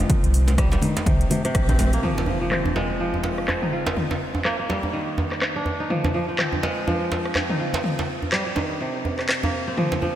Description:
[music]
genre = afro house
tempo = 124 BPM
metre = 4/4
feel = swing 58% on 16ths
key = F minor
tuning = A4 = 435 Hz
[part]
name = kora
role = arpeggios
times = 0.0-10.2 s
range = C3 to F4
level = -26 LUFS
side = equal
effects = sidechain pumping, low-pass filter, tape echo
[part]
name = warm sub bass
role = bass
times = 0.0-2.0 s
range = Bb1 to C2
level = -20 LUFS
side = equal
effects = sidechain pumping
[part]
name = house drum kit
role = drums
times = 0.0-9.9 s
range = crash cymbal, handclaps, hi-hat, rim click, toms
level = -27 LUFS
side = left 1 dB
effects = overdrive, low-pass filter on hats, low-pass filter on toms, low-pass filter on snare, low-pass filter on cymbals, low-pass filter on room
[part]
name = electronic kick drum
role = drums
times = 0.1-1.8 s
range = none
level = -22 LUFS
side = equal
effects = overdrive
[part]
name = congas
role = percussion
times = 0.1-1.9 s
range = none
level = -28 LUFS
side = left 2 dB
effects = none
[part]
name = djembe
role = percussion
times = 0.5-10.1 s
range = none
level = -28 LUFS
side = right 2 dB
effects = none
[part]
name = impact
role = sound effects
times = 2.0-4.0 s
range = none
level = -32 LUFS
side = equal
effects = none
[sound]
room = moderate huge ambient reverb, RT60 5.0 s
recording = dreamy mix soaked in reverb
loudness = -20 LUFS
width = side -12 dB against mid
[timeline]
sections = 0.0-2.0 A section; 2.0-10.2 B section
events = band accent 1.5; impact 2.0-4.0; filter sweep on drum 2.0-10.2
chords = 0.1 Cm; 2.0 Fm7; 4.0 Ebmaj7; 5.9 Fm7; 7.8 Cm

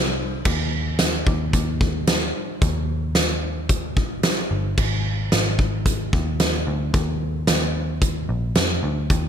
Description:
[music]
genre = dream pop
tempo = 111 BPM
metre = 4/4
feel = straight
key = Ab lydian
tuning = A4 = 442 Hz
[part]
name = vintage muted picked electric bass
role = bass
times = 0.0-9.3 s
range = G1 to F2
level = -24 LUFS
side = equal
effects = none
[part]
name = huge arena drum kit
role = drums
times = 0.5-9.2 s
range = crash cymbal, hi-hat, kick drum, snare drum, tambourine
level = -21 LUFS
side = equal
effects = gated reverb
[sound]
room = light reverb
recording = bright 1980s-style digital production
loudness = -20 LUFS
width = side -8 dB against mid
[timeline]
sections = 0.5-4.8 A section; 4.8-9.3 B section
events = none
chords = none

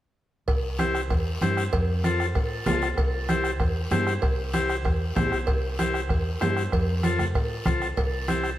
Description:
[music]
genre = latin, cumbia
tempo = 192 BPM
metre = 4/4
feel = straight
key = C major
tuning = A4 = 440 Hz
[part]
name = vintage muted fingered electric bass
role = bass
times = 0.5-8.6 s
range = A1 to A2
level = -28 LUFS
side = equal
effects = none
[part]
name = bombo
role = percussion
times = 0.5-8.6 s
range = none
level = -29 LUFS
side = equal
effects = none
[part]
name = congas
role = percussion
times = 0.5-8.4 s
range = none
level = -30 LUFS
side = right 1 dB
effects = none
[part]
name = cowbell and timbales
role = percussion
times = 0.5-8.4 s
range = none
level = -32 LUFS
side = right 2 dB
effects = none
[part]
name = guiro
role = percussion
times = 0.5-8.6 s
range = none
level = -41 LUFS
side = left 3 dB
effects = none
[part]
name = combo organ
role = accompaniment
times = 0.8-8.5 s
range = E4 to C5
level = -28 LUFS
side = left 2 dB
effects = none
[sound]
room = moderate plate reverb, RT60 2.4 s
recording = heard from further back in the room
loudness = -23 LUFS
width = side -13 dB against mid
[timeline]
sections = 0.5-8.6 A section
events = none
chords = 0.5 C; 1.7 F; 3.0 C; 6.7 F; 8.0 C

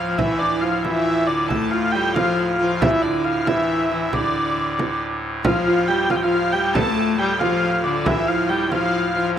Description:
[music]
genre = medieval dance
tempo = 92 BPM (dotted quarters)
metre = 6/8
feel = straight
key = D minor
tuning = A4 = 440 Hz
[part]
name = dark hurdy-gurdy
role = melody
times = 0.0-9.3 s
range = D5 to A5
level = -22 LUFS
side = equal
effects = none
[part]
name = clear viola da gamba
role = second line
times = 0.0-9.4 s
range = D3 to B3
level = -24 LUFS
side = left 4 dB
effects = none
[part]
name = pipe organ, clarinet reed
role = drone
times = 0.0-9.4 s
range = D2 to A2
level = -27 LUFS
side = right 1 dB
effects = none
[part]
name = concert harp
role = second line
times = 0.2-9.4 s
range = D4 to A4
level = -24 LUFS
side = right 2 dB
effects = none
[part]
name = frame drum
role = percussion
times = 0.2-8.9 s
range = none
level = -24 LUFS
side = right 2 dB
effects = none
[sound]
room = moderate plate reverb, RT60 2.4 s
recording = rough home demo mix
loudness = -18 LUFS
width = side -9 dB against mid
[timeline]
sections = 0.0-5.4 A section; 5.4-9.4 B section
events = none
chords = none

